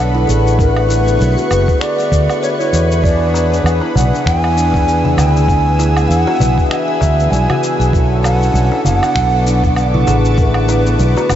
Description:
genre	organic downtempo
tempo	98 BPM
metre	4/4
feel	swing 57% on 16ths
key	E mixolydian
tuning	A4 = 440 Hz
part	breathy mellow low ney	melody	0.0-11.4 s	B4 to G#5	-18 LUFS	equal	diffuse ambient delay
part	hand-pumped harmonium	accompaniment	0.0-11.4 s	D3 to A4	-21 LUFS	left 3 dB	sidechain pumping, analog delay
part	granular cloud pad	sustained chords	0.0-11.4 s	B4 to E6	-23 LUFS	equal	built-in reverb, sidechain pumping
part	kalimba	arpeggios	0.0-11.4 s	B3 to E5	-21 LUFS	right 1 dB	analog delay
part	fretless electric bass	bass	0.0-11.4 s	F#1 to E2	-14 LUFS	equal	sidechain pumping
part	electronic shaker, woodblock and finger snaps	drums	0.3-11.4 s	none	-26 LUFS	equal	none
part	electronic kick drum	drums	0.6-10.5 s	none	-16 LUFS	equal	none
part	darbuka	percussion	3.3-11.4 s	none	-23 LUFS	left 3 dB	none
room	wet huge ambient reverb, RT60 7.6 s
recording	dreamy mix soaked in reverb, nothing above 7.8 kHz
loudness	-11 LUFS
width	side -11 dB against mid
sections	0.0-11.4 A section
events	none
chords	0.0 Bm9; 3.0 E7; 7.9 Bm9

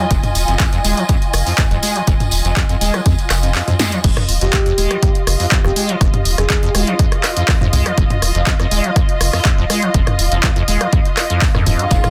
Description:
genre	acid house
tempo	122 BPM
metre	4/4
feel	straight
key	unclear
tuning	A4 = 440 Hz
part	liquid acid bass	riff	0.0-12.0 s	F2 to Ab3	-23 LUFS	equal	tube saturation, lush chorus, sidechain pumping, tape echo
part	muted studio string section	texture	0.0-12.1 s	F4 to Ab5	-25 LUFS	equal	sidechain pumping
part	saturated sub bass	bass	0.1-12.0 s	Eb1 to F2	-21 LUFS	equal	sidechain pumping
part	electronic kick drum	drums	0.1-12.0 s	none	-18 LUFS	equal	none
part	punchy analog drum machine	drums	0.1-12.1 s	crash cymbal, handclaps, hi-hat, rim click, snare drum, toms	-21 LUFS	equal	none
part	tambourine	percussion	0.1-4.0, 11.9-12.1 s	none	-29 LUFS	equal	none
part	breathy flute-like synth lead	melody	4.4-6.9 s	G4 to Ab4	-25 LUFS	equal	lush chorus, tape echo
part	dark studio string section	sustained chords	11.9-12.1 s	Eb3 to F4	-23 LUFS	equal	sidechain pumping
room	moderate studio reverb, RT60 0.5 s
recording	dense, heavily limited modern master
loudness	-15 LUFS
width	mono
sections	0.0-4.0 A section; 4.0-12.1 B section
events	drum fill 3.8; drop 4.0-12.1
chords	0.0 Fm7

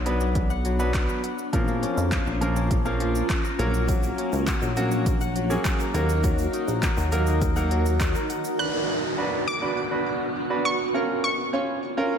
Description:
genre	dance-pop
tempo	102 BPM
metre	4/4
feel	straight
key	unclear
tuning	A4 = 438 Hz
part	granular cloud pad	sustained chords	0.5-12.2 s	D#3 to A#4	-30 LUFS	right 1 dB	built-in reverb, sidechain pumping
part	kora	arpeggios	0.0-9.4 s	E#3 to F#5	-31 LUFS	left 6 dB	sidechain pumping, digital delay, slapback echo
part	chorused synth bass	bass	0.0-8.1 s	A#1 to E#2	-25 LUFS	equal	sidechain pumping
part	clear concert grand piano	accompaniment	0.1-12.1 s	E#3 to C#5	-28 LUFS	right 2 dB	sidechain pumping, slapback echo
part	deep house drum kit	drums	0.1-8.6 s	handclaps, hi-hat, kick drum, shaker	-27 LUFS	equal	none
part	egg shaker	percussion	3.9-8.6 s	none	-44 LUFS	right 9 dB	none
part	analog pluck	melody	8.6-12.2 s	C#6 to F#6	-29 LUFS	equal	chorus, digital delay, slapback echo
part	downlifter	sound effects	8.6-12.2 s	none	-33 LUFS	equal	slapback echo
room	moderate lush hall reverb, RT60 2.1 s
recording	big arena sound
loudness	-22 LUFS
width	side -7 dB against mid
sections	0.0-8.6 A section; 8.6-12.2 B section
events	none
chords	0.0 Bm; 1.5 A#m; 3.6 F#/A#; 5.9 D#m; 8.6 Bm; 10.9 A#m

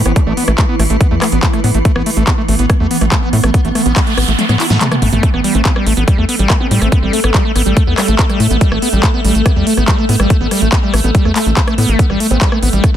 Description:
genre	psychedelic trance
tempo	142 BPM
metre	4/4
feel	straight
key	A minor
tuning	A4 = 440 Hz
part	swarming drone	sustained chords	0.0-13.0 s	E3 to A4	-19 LUFS	right 1 dB	built-in reverb, sidechain pumping
part	tight sequencer bass	bass	0.0-13.0 s	A1 to A2	-14 LUFS	equal	none
part	vowel-sweep wobble bass	second line	0.1-0.3, 5.5-7.2, 12.3-12.5 s	C4 to D4	-26 LUFS	right 4 dB	chorus, sidechain pumping, high-pass filter, digital delay
part	screaming distorted acid line	riff	0.1-13.0 s	G3 to E4	-18 LUFS	equal	distortion, chorus, auto-pan, sidechain pumping, ping-pong delay
part	big-room dance drum kit	drums	0.1-12.9 s	handclaps, hi-hat, rim click, snare drum, toms	-18 LUFS	equal	none
part	electronic kick drum	drums	0.2-12.9 s	none	-13 LUFS	equal	none
part	noise sweep	sound effects	3.8-5.2 s	none	-23 LUFS	right 4 dB	none
room	light reverb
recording	dense, heavily limited modern master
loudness	-10 LUFS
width	side -10 dB against mid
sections	0.0-13.0 A section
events	noise sweep 3.8-5.2; kick drops out 4.4-5.2; drum fill 4.4-5.2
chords	0.0 A5

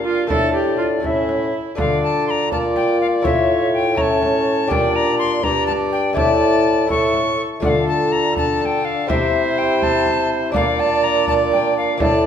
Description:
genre	classical, renaissance-style consort dance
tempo	82 BPM (dotted quarters)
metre	6/8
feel	straight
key	D minor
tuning	A4 = 439 Hz
part	alto recorder	melody	0.0-12.3 s	D5 to C#6	-22 LUFS	left 5 dB	none
part	warm viola	second line	0.0-12.3 s	E4 to D5	-23 LUFS	right 5 dB	none
part	clear trombone	accompaniment	0.0-12.3 s	C#4 to F4	-24 LUFS	left 2 dB	none
part	lute	accompaniment	0.0-12.3 s	G2 to E5	-23 LUFS	left 4 dB	none
part	warm bassoon	bass	0.0-12.3 s	G2 to D3	-21 LUFS	right 2 dB	none
part	frame drum	percussion	0.3-12.2 s	none	-27 LUFS	right 2 dB	none
room	wet recital hall reverb, RT60 1.6 s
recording	minimal, uncompressed stereo recording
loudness	-15 LUFS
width	side -8 dB against mid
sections	0.0-1.8 A section; 1.8-12.3 A section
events	none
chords	0.3 Asus4; 1.0 A; 1.8 Dm; 3.2 A; 4.7 Gm/Bb; 6.2 Asus4; 6.9 A; 7.6 Dm; 9.1 C; 10.6 Bb

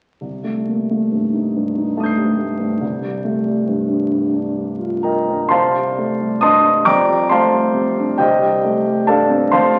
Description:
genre	classical, impressionist solo piano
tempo	45 BPM (dotted quarters)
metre	6/8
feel	uneven beats, rubato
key	C dorian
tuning	A4 = 440 Hz
part	warm concert grand piano	solo	0.2-9.8 s	F1 to C7	-17 LUFS	equal	none
room	wet recital hall reverb, RT60 1.4 s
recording	very old 78 rpm record, vinyl crackle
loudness	-17 LUFS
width	mono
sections	0.2-5.5 A section; 5.5-9.8 B section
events	none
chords	0.2 Cm6; 2.8 Bb69/C; 5.5 Cmadd9; 6.9 F69; 8.2 Cm6

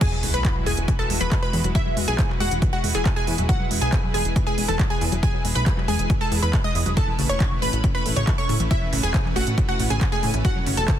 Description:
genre	uplifting trance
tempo	138 BPM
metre	4/4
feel	straight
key	E major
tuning	A4 = 440 Hz
part	wide unison pluck	melody	0.0-11.0 s	E4 to D#6	-28 LUFS	equal	sidechain pumping, ping-pong delay
part	plucky unison lead	second line	0.0-11.0 s	E5 to D#6	-32 LUFS	equal	phaser, ensemble chorus, vintage 12-bit sampler grit, sidechain pumping, ping-pong delay
part	supersaw pad	sustained chords	0.0-11.0 s	G#3 to C#5	-31 LUFS	equal	sidechain pumping
part	wide unison pluck	arpeggios	0.0-10.9 s	C#3 to A3	-31 LUFS	left 2 dB	sidechain pumping, ping-pong delay
part	electronic kick drum	drums	0.0-11.0 s	none	-22 LUFS	equal	none
part	techno drum kit	drums	0.0-11.0 s	crash cymbal, handclaps, hi-hat	-30 LUFS	right 3 dB	none
part	sub drop	sound effects	0.0-1.8 s	none	-32 LUFS	equal	none
part	plucky analog bass	bass	0.2-10.9 s	E1 to A2	-24 LUFS	equal	sidechain pumping, high-pass filter
room	digital ambience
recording	dense, heavily limited modern master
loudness	-19 LUFS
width	side -10 dB against mid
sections	0.0-11.0 A section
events	drop 0.0-11.0; impact 0.0-1.8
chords	0.0 Eadd9; 7.0 Aadd9; 10.4 F#m

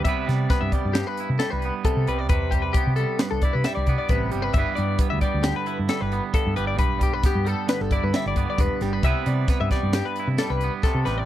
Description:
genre	math rock and midwest emo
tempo	134 BPM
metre	5/4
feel	straight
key	unclear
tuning	A4 = 439 Hz
part	twangy electric guitar	accompaniment	0.0-11.3 s	G2 to B4	-28 LUFS	right 9 dB	none
part	twelve-string electric guitar	arpeggios	0.0-11.3 s	G4 to E5	-27 LUFS	left 9 dB	warbly pitch drift
part	hollow-body short-scale fingered electric bass	bass	0.0-11.3 s	E1 to C3	-25 LUFS	equal	none
part	crisp fusion drum kit	drums	0.0-11.2 s	hi-hat, kick drum, snare drum	-24 LUFS	equal	none
room	little or no reverb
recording	dry, close 1970s-style studio recording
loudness	-21 LUFS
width	side -13 dB against mid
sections	0.0-11.3 A section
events	none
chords	0.1 Cmaj7; 4.5 G6; 9.0 Cmaj7

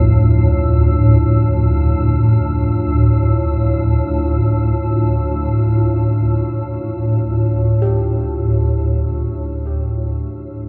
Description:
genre	ambient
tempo	free time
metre	none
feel	none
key	D harmonic minor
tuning	A4 = 440 Hz
part	deep dark ambient pad	sustained chords	0.0-10.7 s	D4 to C#5	-26 LUFS	equal	chorus, built-in reverb
part	gamelan-type bossed gongs	arpeggios	0.0-10.7 s	F2 to G4	-29 LUFS	equal	none
part	swarming drone	drone	0.0-10.7 s	D2 to A2	-17 LUFS	equal	built-in reverb
room	light reverb, small room ambience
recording	none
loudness	-16 LUFS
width	mono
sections	0.0-10.7 A section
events	fade-out 6.4-10.7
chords	0.0 Dmadd9

